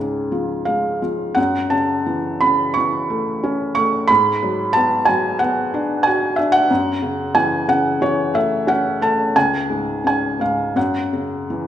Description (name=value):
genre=classical, lyrical solo piano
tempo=90 BPM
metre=4/4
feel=uneven beats, rubato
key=F# minor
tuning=A4 = 445 Hz
part: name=felt-muted upright piano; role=solo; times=0.0-11.7 s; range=C#2 to C#6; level=-16 LUFS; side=equal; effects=none
room=moderate recital hall reverb, RT60 1.6 s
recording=recorded in a church or concert hall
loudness=-16 LUFS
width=side -10 dB against mid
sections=0.0-11.7 A section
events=none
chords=0.0 C#; 1.4 F#m7; 4.1 G#m7b5; 6.7 F#m7; 9.4 C#5; 10.8 F#5